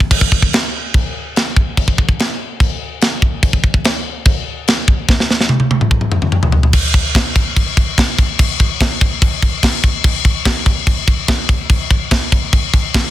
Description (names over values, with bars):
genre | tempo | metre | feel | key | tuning
metal | 145 BPM | 4/4 | straight | none | none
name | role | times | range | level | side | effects
tight metal drum kit | drums | 0.0-13.0 s | china cymbal, crash cymbal, kick drum, snare drum, toms | -12 LUFS | equal | none
room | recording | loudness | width
little or no reverb | dense, heavily limited modern master | -12 LUFS | side -14 dB against mid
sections
0.1-6.7 A section; 6.7-13.1 B section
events
drum fill 5.1-6.7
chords
none